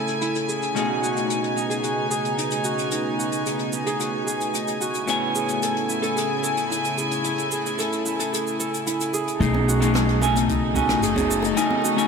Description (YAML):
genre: sunset chillout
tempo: 111 BPM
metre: 4/4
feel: straight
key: unclear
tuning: A4 = 440 Hz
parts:
  - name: electric guitar through a small old amp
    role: accompaniment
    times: 0.0-12.1 s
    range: A2 to G#5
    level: -26 LUFS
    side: moving between left 5 dB and right 2 dB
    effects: auto-pan, digital delay
  - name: warm studio string section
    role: sustained chords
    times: 0.0-12.1 s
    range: C#3 to G#5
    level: -26 LUFS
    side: left 1 dB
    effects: none
  - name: Celtic harp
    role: arpeggios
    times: 0.0-12.1 s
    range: D#4 to A4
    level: -28 LUFS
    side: right 2 dB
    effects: digital delay
  - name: jazz brush drum kit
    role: drums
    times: 0.1-12.1 s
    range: cabasa, hi-hat, rim click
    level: -30 LUFS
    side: equal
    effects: low-pass filter on hats, low-pass filter on snare, low-pass filter on perc, low-pass filter on room
  - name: upright bass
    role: bass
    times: 9.4-11.5 s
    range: F#1 to B1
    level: -24 LUFS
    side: right 1 dB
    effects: none
  - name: electronic kick drum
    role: drums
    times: 9.4-11.3 s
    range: none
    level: -30 LUFS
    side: right 1 dB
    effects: none
  - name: congas and bongos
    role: percussion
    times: 9.5-11.9 s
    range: none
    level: -30 LUFS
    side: right 5 dB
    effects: none
room: wet lush hall reverb, RT60 2.6 s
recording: bright 1980s-style digital production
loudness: -21 LUFS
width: side -5 dB against mid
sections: 0.0-9.4 A section; 9.4-12.1 B section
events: filter sweep on clean electric guitar 0.0-9.4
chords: 0.0 Amaj7; 0.8 B13; 5.1 Amaj7; 9.4 B13